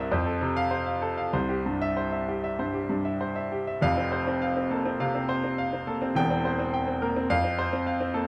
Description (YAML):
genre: classical, virtuoso piano study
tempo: 94-108 BPM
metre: 4/4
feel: rubato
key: F major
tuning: A4 = 440 Hz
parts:
  - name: clear grand piano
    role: solo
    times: 0.0-8.3 s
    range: E1 to G5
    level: -28 LUFS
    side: equal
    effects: none
room: moderate large studio reverb, RT60 0.9 s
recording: dark, warm production, nothing above 11.0 kHz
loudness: -28 LUFS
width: mono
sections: 0.0-3.8 A section; 3.8-8.3 B section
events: none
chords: 0.1 F; 1.3 C; 3.8 F; 6.2 C7/E; 7.3 F